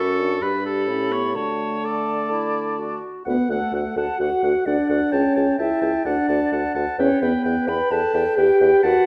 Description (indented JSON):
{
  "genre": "quick classical-period movement for wind quintet",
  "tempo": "129 BPM",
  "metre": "4/4",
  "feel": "straight",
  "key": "D major",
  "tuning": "A4 = 440 Hz",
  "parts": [
    { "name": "silver concert flute", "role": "melody", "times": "0.0-9.1 s", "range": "A4 to C#6", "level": "-31 LUFS", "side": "equal", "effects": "none" },
    { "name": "clear oboe", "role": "second line", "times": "0.0-9.1 s", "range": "A4 to A5", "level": "-30 LUFS", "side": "equal", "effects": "none" },
    { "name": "dark French horn", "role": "accompaniment", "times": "0.0-9.1 s", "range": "A3 to B4", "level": "-24 LUFS", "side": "equal", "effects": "none" },
    { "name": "mellow clarinet", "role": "accompaniment", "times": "0.0-9.1 s", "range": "E4 to G5", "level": "-32 LUFS", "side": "equal", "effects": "none" },
    { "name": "dark bassoon", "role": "bass", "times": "0.0-8.9 s", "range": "C#2 to D3", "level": "-28 LUFS", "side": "equal", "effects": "none" }
  ],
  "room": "wet stone room reverb, RT60 1.0 s",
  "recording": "none",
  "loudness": "-21 LUFS",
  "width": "mono",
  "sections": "0.0-3.3 A section; 3.3-9.1 B section",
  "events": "none",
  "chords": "0.4 G; 0.9 A; 1.4 D; 5.1 A7/C#; 6.1 D; 7.0 Em"
}